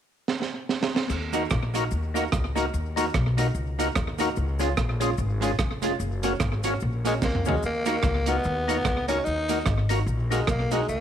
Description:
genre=ska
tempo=147 BPM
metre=4/4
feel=swing 59% on 8ths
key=Eb minor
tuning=A4 = 441 Hz
part: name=crunchy breakbeat drum kit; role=drums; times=0.3-10.8 s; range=crash cymbal, hi-hat, kick drum, rim click, snare drum, toms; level=-28 LUFS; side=right 2 dB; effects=slapback echo
part: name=upright bass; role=bass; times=1.1-11.0 s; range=F1 to Eb2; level=-28 LUFS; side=left 1 dB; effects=none
part: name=cabasa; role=percussion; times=1.1-11.0 s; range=none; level=-45 LUFS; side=left 14 dB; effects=slapback echo
part: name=archtop guitar, miked and amplified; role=accompaniment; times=1.3-10.8 s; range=Ab3 to Gb4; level=-31 LUFS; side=right 10 dB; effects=none
part: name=percussive tonewheel organ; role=stabs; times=1.3-10.8 s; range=Db4 to Bb4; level=-31 LUFS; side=left 10 dB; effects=slow rotary speaker
part: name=growling tenor saxophone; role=melody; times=7.1-11.0 s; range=Ab3 to Eb4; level=-27 LUFS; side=left 1 dB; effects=none
room=light reverb, small room reverb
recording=1960s-style stereo with parts hard left and right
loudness=-23 LUFS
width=side -9 dB against mid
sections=0.0-1.1 A section; 1.1-7.6 B section; 7.6-11.0 C section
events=drum fill 0.3-1.1, 7.2-7.6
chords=0.0 N.C.; 1.1 Ebm; 4.4 Db; 6.0 Gb; 7.6 Ebm

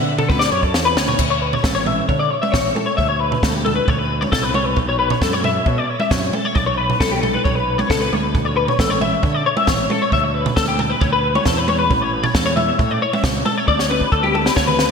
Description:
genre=math rock and midwest emo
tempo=134 BPM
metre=4/4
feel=straight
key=D major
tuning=A4 = 442 Hz
part: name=twelve-string electric guitar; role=arpeggios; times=0.0-14.9 s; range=G4 to E5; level=-18 LUFS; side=left 4 dB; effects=ensemble chorus, ping-pong delay
part: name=fuzz fingered electric bass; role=bass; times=0.0-14.9 s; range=A1 to D3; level=-23 LUFS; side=right 1 dB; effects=overdrive
part: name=compact cocktail drum kit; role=drums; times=0.2-14.9 s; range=crash cymbal, kick drum, snare drum, toms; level=-20 LUFS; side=right 2 dB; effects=gated reverb
room=moderate lush hall reverb, RT60 1.9 s, small room ambience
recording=bright 1980s-style digital production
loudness=-15 LUFS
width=side -6 dB against mid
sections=0.0-1.2 A section; 1.2-14.9 B section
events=drum fill 0.3-1.2, 13.7-14.9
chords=0.0 Dmaj7; 1.2 Dsus2; 4.8 B7sus2; 8.1 Dsus2; 11.9 A; 13.7 D5

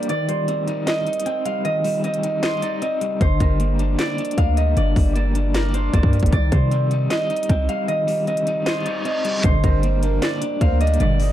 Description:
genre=hip hop, trap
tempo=154 BPM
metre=4/4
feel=half-time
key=G minor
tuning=A4 = 441 Hz
part: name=concert harp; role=melody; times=0.0-11.3 s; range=Bb4 to G5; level=-24 LUFS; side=right 1 dB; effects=none
part: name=electric guitar at the edge of break-up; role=accompaniment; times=0.0-11.3 s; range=D3 to Eb5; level=-25 LUFS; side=left 1 dB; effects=tremolo
part: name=trap drum kit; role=drums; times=0.0-11.3 s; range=handclaps, hi-hat, kick drum, snare drum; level=-22 LUFS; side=equal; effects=none
part: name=downlifter and reverse cymbal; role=sound effects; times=0.0-0.1, 8.8-9.4 s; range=none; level=-28 LUFS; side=equal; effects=none
part: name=warm 808-style bass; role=bass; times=3.2-11.3 s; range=G1 to C3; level=-19 LUFS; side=equal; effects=none
part: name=dark studio string section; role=stabs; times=9.4-11.3 s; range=Bb1 to D3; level=-27 LUFS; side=right 3 dB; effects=ping-pong delay
part: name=breathy flute-like synth lead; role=second line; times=9.6-11.3 s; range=Bb4 to Eb5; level=-30 LUFS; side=right 6 dB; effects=chorus, ping-pong delay
room=digital ambience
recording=dark, warm production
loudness=-18 LUFS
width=side -12 dB against mid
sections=0.0-9.4 A section; 9.4-11.3 B section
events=break 0.0-3.2, 7.9-9.4; reverse cymbal 8.8-9.4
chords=0.1 Cm; 3.2 Gm; 6.3 Cm; 9.4 Gm

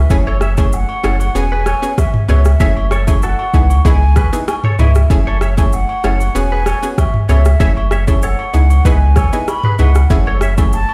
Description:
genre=afrobeats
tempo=96 BPM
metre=4/4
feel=straight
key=F# dorian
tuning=A4 = 439 Hz
part: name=hollow concert flute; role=melody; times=0.0-10.9 s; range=E5 to B5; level=-25 LUFS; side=equal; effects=delay
part: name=warm sub bass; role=bass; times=0.0-10.8 s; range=E1 to C#2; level=-15 LUFS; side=equal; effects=none
part: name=analog pluck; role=accompaniment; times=0.1-10.9 s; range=A3 to G#4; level=-25 LUFS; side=equal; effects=chorus
part: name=afro-pop drum kit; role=drums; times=0.1-10.9 s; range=kick drum, rim click, shaker, toms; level=-18 LUFS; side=equal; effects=none
part: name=direct-recorded clean electric guitar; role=riff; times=0.3-10.5 s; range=E4 to E5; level=-28 LUFS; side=equal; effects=ensemble chorus, delay
part: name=agogo bells and woodblock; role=percussion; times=0.3-10.9 s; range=none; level=-30 LUFS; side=equal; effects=none
room=little or no reverb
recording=played on a big sound system in a bare room, stone room reverb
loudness=-13 LUFS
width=mono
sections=0.0-10.9 A section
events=none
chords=0.1 F#m9; 1.4 E69; 2.6 F#m9; 3.5 C#m7; 5.1 F#m9; 6.4 E69; 7.6 F#m9; 8.5 C#m7; 10.1 F#m9

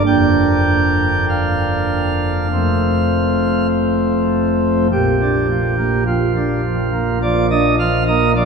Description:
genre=classical, chorale-style piece for pipe organ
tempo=48-53 BPM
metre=4/4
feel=rubato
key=Bb major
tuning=A4 = 440 Hz
part: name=pipe organ, sparkling flutes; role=solo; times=0.0-8.5 s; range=F1 to G5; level=-14 LUFS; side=right 1 dB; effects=none
room=wet cathedral reverb, RT60 4.9 s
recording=small room reverb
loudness=-14 LUFS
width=side -5 dB against mid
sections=0.0-4.9 A section; 4.9-8.5 B section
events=none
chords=0.1 Bb/F; 2.5 F; 4.9 Bb

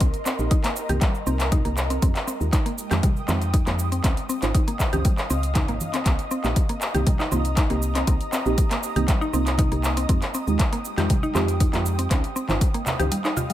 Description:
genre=afro house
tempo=119 BPM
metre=4/4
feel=straight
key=C phrygian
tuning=A4 = 440 Hz
part: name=ethereal airy pad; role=sustained chords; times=0.0-13.5 s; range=Ab3 to Eb6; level=-33 LUFS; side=equal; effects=ensemble chorus, built-in reverb, tremolo, sidechain pumping
part: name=mallet-like synth pluck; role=arpeggios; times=0.0-13.5 s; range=G3 to G4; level=-29 LUFS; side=equal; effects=chorus, sidechain pumping, tape echo
part: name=deep mellow chord stab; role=stabs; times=0.0-13.2 s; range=Ab3 to Db5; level=-30 LUFS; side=right 3 dB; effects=chorus, phaser, sidechain pumping, tape echo
part: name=woody FM bass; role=bass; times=0.0-13.1 s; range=Ab1 to F2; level=-25 LUFS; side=equal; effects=sidechain pumping
part: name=deep house drum kit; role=drums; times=0.0-13.5 s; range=cabasa, handclaps, hi-hat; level=-29 LUFS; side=equal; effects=none
part: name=electronic kick drum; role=drums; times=0.0-12.7 s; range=none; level=-21 LUFS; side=equal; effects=none
part: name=congas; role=percussion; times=0.9-13.5 s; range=none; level=-31 LUFS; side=right 2 dB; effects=none
room=little or no reverb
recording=none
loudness=-20 LUFS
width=side -13 dB against mid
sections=0.0-13.5 A section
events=none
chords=0.0 Cm7; 2.0 Fm9; 4.0 Dbmaj9; 6.1 Cm7; 10.1 Fm9; 12.1 Dbmaj9

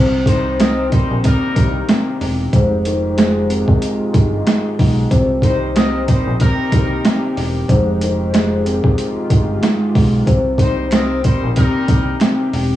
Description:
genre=hip hop, boom-bap hip-hop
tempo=93 BPM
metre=4/4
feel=swing 60% on 16ths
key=C minor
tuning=A4 = 441 Hz
part: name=vibraphone with soft mallets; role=melody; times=0.0-12.1 s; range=G4 to C5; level=-23 LUFS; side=left 3 dB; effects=high-pass filter, low-pass filter, cassette tape, tape echo
part: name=dark grand piano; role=accompaniment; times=0.0-12.8 s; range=Ab2 to Ab3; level=-20 LUFS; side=left 2 dB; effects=cassette tape, high-pass filter, low-pass filter
part: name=dark analog pad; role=sustained chords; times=0.8-12.8 s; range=Eb3 to G4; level=-26 LUFS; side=right 2 dB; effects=chorus, high-pass filter, low-pass filter, cassette tape
part: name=deep dub fingered electric bass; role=bass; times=0.0-12.8 s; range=E1 to C2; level=-20 LUFS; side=right 1 dB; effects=none
part: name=bright trumpet section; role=stabs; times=0.3-12.2 s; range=G3 to Eb5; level=-25 LUFS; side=equal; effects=high-pass filter, low-pass filter, cassette tape, tape echo
part: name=boom bap sampler-style drum kit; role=drums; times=0.3-12.7 s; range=hi-hat, kick drum, snare drum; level=-15 LUFS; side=right 1 dB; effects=overdrive
part: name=finger snap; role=percussion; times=10.9-12.4 s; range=none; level=-36 LUFS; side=right 7 dB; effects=none
room=light reverb, studio reverb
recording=home recording on cassette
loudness=-13 LUFS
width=side -13 dB against mid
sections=0.0-12.8 A section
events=none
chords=0.0 Cm7; 2.5 Fm9; 5.1 Cm7; 7.7 Fm9; 10.3 Cm7

